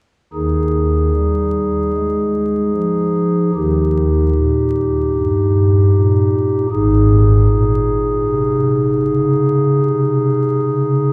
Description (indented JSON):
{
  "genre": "classical, chorale-style piece for pipe organ",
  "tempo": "76 BPM",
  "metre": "4/4",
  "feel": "rubato",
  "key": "Ab major",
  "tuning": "A4 = 439 Hz",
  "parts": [
    { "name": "pipe organ, stopped flute", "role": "solo", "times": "0.3-11.1 s", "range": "Ab1 to Ab4", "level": "-16 LUFS", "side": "equal", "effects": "none" }
  ],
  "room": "wet church reverb, RT60 2.8 s",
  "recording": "heard from further back in the room, vinyl crackle",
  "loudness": "-16 LUFS",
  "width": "mono",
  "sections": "0.3-11.1 A section",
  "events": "none",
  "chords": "0.3 Ab5/Eb; 3.5 Eb; 6.7 Ab",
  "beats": "| 0.34 1.14 1.94 2.75 | 3.55 4.34 5.14 5.93 | 6.71 7.49 8.27 9.05 | 9.84 10.62"
}